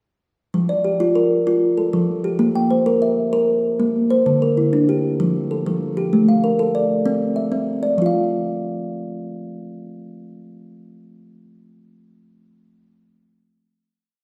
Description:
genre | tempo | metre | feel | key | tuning
southern african traditional, mbira-style interlocking cycle | 129 BPM (dotted quarters) | 12/8 | straight | F major | A4 = 439 Hz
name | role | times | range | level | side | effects
kalimba | solo | 0.5-11.4 s | D3 to G5 | -19 LUFS | equal | none
room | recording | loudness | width
wet recital hall reverb, RT60 1.6 s | heard from further back in the room | -19 LUFS | mono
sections
0.5-8.0 A section; 8.0-11.6 final note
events
none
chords
0.5 F; 2.4 C7/Bb; 4.3 C9/D; 5.2 F; 6.1 Gm9/A; 7.1 C; 8.0 N.C.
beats
| 0.54 1.00 1.47 1.93 | 2.40 2.87 3.33 3.80 | 4.27 4.73 5.20 5.67 | 6.13 6.59 7.06 7.52 | 7.98 8.44 8.90 9.36 | 9.81 10.27 10.73 11.18

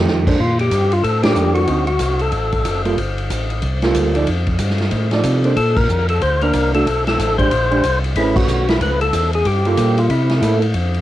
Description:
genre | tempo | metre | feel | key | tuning
soul jazz organ trio | 185 BPM | 4/4 | swing 62% on 8ths | unclear | A4 = 439 Hz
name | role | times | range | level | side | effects
vintage hollow-body jazz guitar | accompaniment | 0.0-10.6 s | D3 to D5 | -19 LUFS | right 3 dB | cassette tape
mellow tonewheel organ | bass | 0.0-11.0 s | F#1 to C3 | -19 LUFS | equal | chorus vibrato, slow rotary speaker
swinging big-band drum kit | drums | 0.1-11.0 s | crash cymbal, hi-hat, kick drum, ride cymbal, snare drum | -21 LUFS | equal | cassette tape
percussive tonewheel organ | melody | 0.4-2.8, 5.6-10.6 s | E4 to C5 | -18 LUFS | left 2 dB | slow rotary speaker, overdrive
room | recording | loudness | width
moderate booth ambience, RT60 0.2 s | home recording on cassette | -14 LUFS | side -14 dB against mid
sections
0.4-10.7 A section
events
band accent 1.2, 5.7, 8.3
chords
0.4 Bbmaj9; 1.7 D7b9; 3.0 Gm9; 4.3 F13; 5.6 Bbmaj9; 6.9 Bm7; 7.5 Bb13; 8.2 Amaj9; 9.5 Gm9; 10.1 C6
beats
0.07 | 0.39 0.71 1.04 1.36 | 1.69 2.01 2.33 2.66 | 2.98 3.30 3.63 3.95 | 4.27 4.60 4.92 5.24 | 5.57 5.89 6.21 6.54 | 6.86 7.18 7.51 7.83 | 8.16 8.48 8.80 9.13 | 9.45 9.78 10.10 10.42 | 10.75

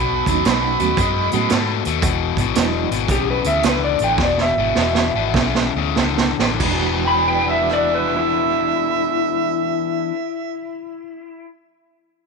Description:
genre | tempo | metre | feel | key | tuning
electric blues shuffle | 91-114 BPM | 4/4 | swing 66% on 8ths | E mixolydian | A4 = 443 Hz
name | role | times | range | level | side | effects
mellow harmonica | second line | 0.0-1.8, 7.1-10.8 s | E5 to B5 | -23 LUFS | right 14 dB | overdrive
cranked stack guitar | riff | 0.0-10.2 s | E2 to G#4 | -22 LUFS | left 16 dB | overdrive
vintage muted fingered electric bass | bass | 0.0-9.9 s | E1 to A2 | -25 LUFS | equal | none
mellow reed electric piano | accompaniment | 0.3-2.9, 6.5-11.0 s | E2 to F#6 | -27 LUFS | right 13 dB | fast tremolo
raw garage drum kit | drums | 0.3-7.8 s | crash cymbal, hi-hat, kick drum, rim click, snare drum | -21 LUFS | right 5 dB | none
electric slide guitar | melody | 3.1-11.5 s | E4 to B5 | -21 LUFS | left 2 dB | none
room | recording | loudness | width
light reverb, small room reverb | 1960s-style stereo with parts hard left and right | -16 LUFS | side -4 dB against mid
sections
0.0-6.6 A section; 6.6-11.9 B section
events
slowing down 2.0-6.6; drum fill 4.2-6.6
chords
0.0 B7; 2.0 E7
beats
0.45 0.98 1.51 | 2.03 2.56 3.09 3.64 | 4.19 4.76 5.35 5.97 | 6.61 7.27 7.92 8.58 | 9.24 9.90 10.55 11.21

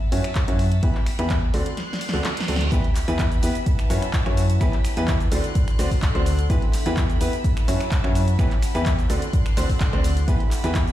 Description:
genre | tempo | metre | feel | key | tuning
piano house | 127 BPM | 4/4 | straight | E minor | A4 = 438 Hz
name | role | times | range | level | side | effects
rich studio violin section | sustained chords | 0.0-10.9 s | D5 to F#6 | -34 LUFS | left 2 dB | sidechain pumping
clear baby grand piano | riff | 0.1-10.8 s | D3 to C#5 | -28 LUFS | equal | sidechain pumping, low-pass filter, digital delay
solid FM bass | bass | 0.1-10.9 s | D2 to F#2 | -22 LUFS | equal | sidechain pumping
punchy analog drum machine | drums | 0.1-10.9 s | finger snaps, handclaps, hi-hat, shaker, snare drum | -31 LUFS | equal | none
electronic kick drum | drums | 0.4-10.9 s | none | -22 LUFS | equal | none
reverse cymbal and sub drop | sound effects | 2.0-4.6 s | none | -32 LUFS | right 1 dB | none
warbly tape-like pad | texture | 3.4-10.9 s | D4 to B5 | -34 LUFS | left 1 dB | chorus, built-in reverb, sidechain pumping
room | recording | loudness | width
little or no reverb | played on a big sound system in a bare room, stone room reverb | -19 LUFS | side -13 dB against mid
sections
0.0-2.7 A section; 2.7-10.9 B section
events
kick drops out 1.8-2.7; drum fill 1.8-2.7; reverse cymbal 2.0-2.7; drop 2.7-10.9; impact 2.7-4.6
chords
0.0 F#m7; 0.8 Em; 1.5 D7; 2.7 Em; 3.7 F#m7; 4.6 Em; 5.3 D7; 6.5 Em; 7.4 F#m7; 8.4 Em; 9.1 D7; 10.3 Em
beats
0.36 | 0.83 1.30 1.77 2.25 | 2.72 3.19 3.67 4.14 | 4.61 5.08 5.55 6.03 | 6.50 6.97 7.44 7.92 | 8.39 8.86 9.33 9.81 | 10.28 10.75

